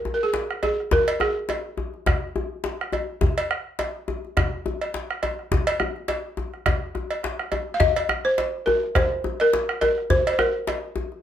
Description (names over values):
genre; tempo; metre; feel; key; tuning
west african traditional, West African drum ensemble; 104 BPM; 4/4; swing 56% on 16ths; unclear; A4 = 440 Hz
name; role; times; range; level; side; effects
balafon; melody; 0.0-2.9, 7.7-11.2 s; Ab4 to F5; -22 LUFS; equal; none
djembe; percussion; 0.1-11.2 s; none; -28 LUFS; left 3 dB; none
bombo; percussion; 0.5-10.8 s; none; -25 LUFS; right 2 dB; none
cowbell; percussion; 0.6-10.8 s; none; -28 LUFS; right 2 dB; none
room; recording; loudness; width
moderate studio reverb, RT60 0.6 s; none; -22 LUFS; side -10 dB against mid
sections
0.0-11.2 A section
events
none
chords
none